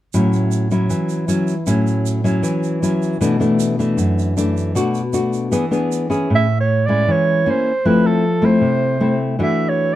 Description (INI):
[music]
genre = bossa nova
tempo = 156 BPM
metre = 4/4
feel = straight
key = A major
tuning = A4 = 440 Hz
[part]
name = nylon-string guitar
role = accompaniment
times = 0.1-10.0 s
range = F#2 to G#4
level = -16 LUFS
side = left 1 dB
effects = none
[part]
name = egg shaker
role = percussion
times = 0.1-6.3 s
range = none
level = -34 LUFS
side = right 12 dB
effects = none
[part]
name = breathy soprano saxophone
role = melody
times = 6.4-10.0 s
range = A4 to E5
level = -18 LUFS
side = right 4 dB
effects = none
[sound]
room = light reverb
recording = dark, warm production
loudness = -15 LUFS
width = side -13 dB against mid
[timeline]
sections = 0.1-6.3 A section; 6.3-10.0 B section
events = none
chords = 0.1 A6; 3.2 Bm7; 5.5 E7; 6.3 Amaj7; 7.5 C7b9; 7.8 Fmaj7; 9.4 E9sus4